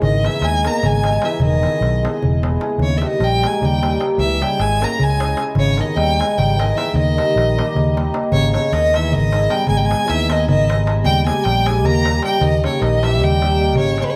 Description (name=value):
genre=balkan folk, Balkan wedding band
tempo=305 BPM (eighths)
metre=7/8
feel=straight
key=Eb phrygian dominant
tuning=A4 = 440 Hz
part: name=clear violin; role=melody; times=0.0-14.2 s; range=Cb5 to Bb5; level=-22 LUFS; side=equal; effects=tape echo
part: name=mellow French horn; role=second line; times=0.0-14.2 s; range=Cb3 to Bb3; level=-28 LUFS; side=equal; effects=none
part: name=cimbalom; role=accompaniment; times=0.0-14.2 s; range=G3 to Ab4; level=-25 LUFS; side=equal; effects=none
part: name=fingered electric bass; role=bass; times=0.0-14.0 s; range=E1 to Eb2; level=-22 LUFS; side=equal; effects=none
part: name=darbuka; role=percussion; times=0.0-14.1 s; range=none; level=-25 LUFS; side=equal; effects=none
room=light reverb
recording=close, detailed microphones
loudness=-17 LUFS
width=mono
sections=0.0-8.3 A section; 8.3-14.2 B section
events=none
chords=0.0 Abm; 1.4 E; 2.8 Eb; 4.2 Dbm; 5.6 Abm; 6.9 Eb; 8.3 Abm; 11.1 Eb